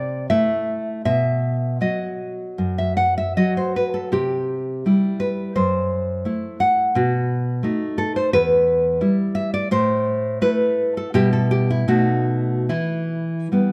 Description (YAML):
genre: romantic piece for solo classical guitar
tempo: 72-89 BPM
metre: 4/4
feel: rubato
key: unclear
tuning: A4 = 440 Hz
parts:
  - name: nylon-string guitar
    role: solo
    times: 0.0-13.7 s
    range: E2 to F#5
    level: -21 LUFS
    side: equal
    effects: none
room: moderate recital hall reverb, RT60 1.6 s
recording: none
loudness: -21 LUFS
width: mono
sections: 0.0-13.7 A section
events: none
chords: 0.0 Am/C; 1.0 B; 4.1 C; 5.6 F#m7b5; 7.0 B7; 8.3 Em; 9.7 Am; 11.1 Em/B; 11.9 B7; 12.7 Em